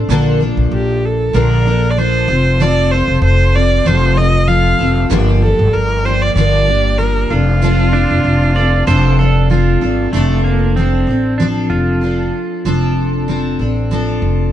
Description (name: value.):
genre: pop.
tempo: 96 BPM.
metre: 4/4.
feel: swing 55% on 16ths.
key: unclear.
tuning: A4 = 441 Hz.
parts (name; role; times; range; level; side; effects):
picked steel-string acoustic guitar; accompaniment; 0.0-14.5 s; G2 to A4; -17 LUFS; equal; double-tracked left and right.
upright bass; bass; 0.0-14.5 s; F1 to Bb1; -14 LUFS; equal; none.
rich viola; melody; 0.7-9.5 s; F4 to F5; -17 LUFS; right 1 dB; none.
pedal steel guitar; second line; 7.9-12.9 s; A3 to D5; -19 LUFS; right 4 dB; none.
room: studio ambience.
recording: nothing above 10.8 kHz.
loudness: -11 LUFS.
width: side -11 dB against mid.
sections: 0.0-10.1 A section; 10.1-14.5 B section.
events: none.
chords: 0.1 Bbmaj7; 2.3 F; 5.1 Gm7; 7.3 Dm7/F.